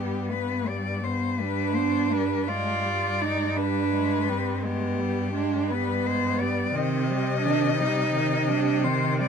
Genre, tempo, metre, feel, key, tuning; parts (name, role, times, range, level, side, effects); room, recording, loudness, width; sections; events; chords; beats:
classical, lyrical piece for cello ensemble; 56 BPM (dotted quarters); 12/8; rubato; A4 = 440 Hz
rich cello; melody; 0.0-9.3 s; G4 to Eb5; -29 LUFS; left 8 dB
warm cello; second line; 0.0-9.3 s; B3 to F4; -27 LUFS; right 6 dB
dark cello; accompaniment; 0.0-9.3 s; Eb3 to B3; -31 LUFS; left 4 dB
rich cello; bass; 0.0-9.3 s; G2 to C3; -30 LUFS; equal
light reverb; minimal, uncompressed stereo recording; -23 LUFS; side -6 dB against mid
0.0-9.3 A section
0.0 G; 2.5 G(b9); 6.8 Cm
0.30 1.40 | 2.48 3.56 4.64 5.71 | 6.75 7.80 8.85